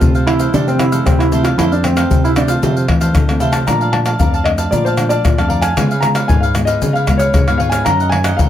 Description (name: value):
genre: samba and choro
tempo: 114 BPM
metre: 4/4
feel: straight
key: F major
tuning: A4 = 440 Hz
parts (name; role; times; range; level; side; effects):
- warm concert grand piano; melody; 0.0-8.4 s; C4 to Bb5; -18 LUFS; equal; plate reverb
- cavaquinho; accompaniment; 0.0-8.5 s; E4 to A5; -23 LUFS; right 1 dB; none
- nylon-string guitar; accompaniment; 0.0-8.5 s; F2 to F4; -22 LUFS; left 1 dB; none
- overdriven tine electric piano; bass; 0.0-8.5 s; Db2 to E3; -18 LUFS; right 1 dB; none
- egg shaker, surdo, pandeiro and tamborim; percussion; 0.0-8.5 s; none; -16 LUFS; left 2 dB; none
room: light reverb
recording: none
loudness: -12 LUFS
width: side -11 dB against mid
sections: 0.0-3.7 A section; 3.7-8.5 B section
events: none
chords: 0.0 Fmaj7; 3.7 Bbmaj7; 5.8 Db7; 7.9 Gb6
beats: 0.01 0.54 1.06 | 1.58 2.10 2.63 3.15 | 3.68 4.20 4.72 5.25 | 5.77 6.30 6.82 7.35 | 7.87 8.40